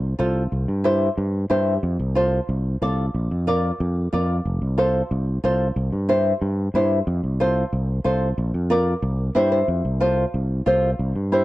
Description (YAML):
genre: latin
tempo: 183 BPM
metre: 4/4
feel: straight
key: F major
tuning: A4 = 440 Hz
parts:
  - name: fingered electric bass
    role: bass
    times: 0.0-11.4 s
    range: F1 to G2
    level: -22 LUFS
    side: equal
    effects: none
  - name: nylon-string guitar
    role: accompaniment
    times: 0.2-11.4 s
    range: E4 to E5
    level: -22 LUFS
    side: equal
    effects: none
room: moderate spring reverb, RT60 1.5 s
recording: cassette tape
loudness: -19 LUFS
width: side -17 dB against mid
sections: 0.0-9.7 A section; 9.7-11.4 B section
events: nylon-string guitar fill 9.2-9.7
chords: 0.0 F; 0.5 C; 1.8 F; 3.1 Bb; 4.5 F; 5.8 C; 7.1 F; 8.4 Bb; 9.0 C; 9.7 F